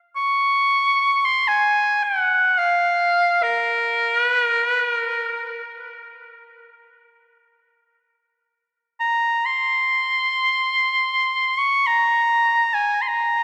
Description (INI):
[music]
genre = world meditative, free-time meditation music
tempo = free time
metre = none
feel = none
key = Bb minor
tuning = A4 = 441 Hz
[part]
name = bright oboe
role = solo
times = 0.2-13.4 s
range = Bb4 to Db6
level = -20 LUFS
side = equal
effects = tape echo
[sound]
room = wet echo chamber reverb, RT60 2.3 s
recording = dark, warm production, nothing above 10.7 kHz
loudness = -19 LUFS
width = mono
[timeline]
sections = 0.0-8.1 A section; 8.1-13.4 A section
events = none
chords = none